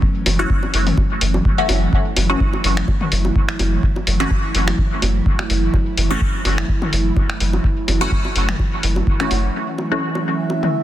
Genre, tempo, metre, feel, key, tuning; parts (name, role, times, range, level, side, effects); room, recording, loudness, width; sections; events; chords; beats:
dub techno; 126 BPM; 4/4; swing 55% on 16ths; F# minor; A4 = 438 Hz
airy breathy pad; sustained chords; 0.0-10.8 s; E3 to E4; -24 LUFS; right 2 dB; chorus, sidechain pumping
electronic kick drum; drums; 0.0-9.2 s; -18 LUFS; equal; studio reverb
soft dub sub bass; bass; 0.3-9.5 s; F#1; -19 LUFS; equal; sidechain pumping
lo-fi sampler-style drum kit; drums; 0.3-9.4 s; finger snaps, hi-hat; -24 LUFS; left 1 dB; low-pass filter on hats, studio reverb, soft clipping on snare, low-pass filter on snare
electronic bongos and toms; percussion; 0.3-10.7 s; -27 LUFS; left 1 dB; overdrive, sidechain pumping on perc, studio reverb, sidechain pumping on toms, dub echo
filtered dub chord stab; stabs; 0.4-10.0 s; E3 to F#4; -23 LUFS; left 1 dB; phaser, sidechain pumping, dub echo
bubbling stepped-filter texture; texture; 9.8-10.8 s; E4 to E5; -26 LUFS; right 3 dB; chorus, built-in reverb, sidechain pumping
light reverb; dense, heavily limited modern master; -16 LUFS; side -13 dB against mid
0.0-9.5 A section; 9.5-10.8 B section
0.0 F#m7
| 0.02 0.50 0.98 1.45 | 1.93 2.40 2.88 3.36 | 3.83 4.31 4.79 5.26 | 5.74 6.21 6.69 7.17 | 7.64 8.12 8.60 9.07 | 9.55 10.02 10.50